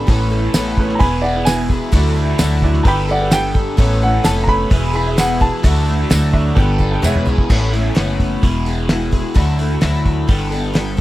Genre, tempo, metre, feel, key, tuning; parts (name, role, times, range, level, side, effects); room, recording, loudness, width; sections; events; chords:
folk rock and heartland rock; 129 BPM; 4/4; straight; A major; A4 = 440 Hz
dark baby grand piano; melody; 0.0-6.3 s; D5 to B5; -20 LUFS; right 1 dB
picked twelve-string acoustic guitar; accompaniment; 0.0-11.0 s; E2 to A4; -24 LUFS; left 3 dB
pedal harmonium; sustained chords; 0.0-7.5 s; E4 to B5; -30 LUFS; right 2 dB
crunchy overdriven guitar; riff; 0.0-11.0 s; E2 to A4; -23 LUFS; equal; phaser
upright bass; bass; 0.0-11.0 s; E1 to D2; -18 LUFS; equal
bright upright piano; accompaniment; 0.1-7.4 s; C#4 to G5; -27 LUFS; right 4 dB
cloth-damped thuddy drum kit; drums; 0.1-11.0 s; crash cymbal, hi-hat, kick drum, snare drum, toms; -17 LUFS; equal
tambourine; percussion; 0.5-7.2 s; -27 LUFS; right 6 dB
little or no reverb; dry, close 1970s-style studio recording; -13 LUFS; side -16 dB against mid
0.0-7.5 A section; 7.5-11.0 B section
grand piano solo 0.0-7.5; drum fill 6.6-7.5; upright piano fill 6.8-7.5
0.1 Aadd9; 1.0 E; 1.9 Dadd9; 2.9 Gadd9; 3.8 Aadd9; 4.7 E; 5.6 Dadd9; 6.6 Gadd9; 7.0 E6; 7.5 Aadd9; 8.4 E; 9.4 Dadd9; 10.3 Gadd9